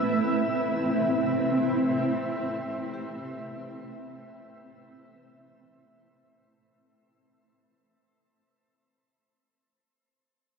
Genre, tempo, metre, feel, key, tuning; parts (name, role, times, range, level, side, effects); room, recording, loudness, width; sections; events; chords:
ambient; free time; A minor; A4 = 441 Hz
granular cloud pad; sustained chords; 0.0-6.6 s; A3 to E5; -26 LUFS; right 1 dB; built-in reverb
vibraphone with medium hard mallets; arpeggios; 0.0-9.6 s; G4 to E5; -53 LUFS; equal
glass harmonica; texture; 0.0-6.7 s; E5; -34 LUFS; equal
wet shimmer reverb, RT60 6.3 s; cassette tape; -25 LUFS; side -5 dB against mid
0.0-6.6 A section
fade-out 0.0-6.6
0.0 Amadd9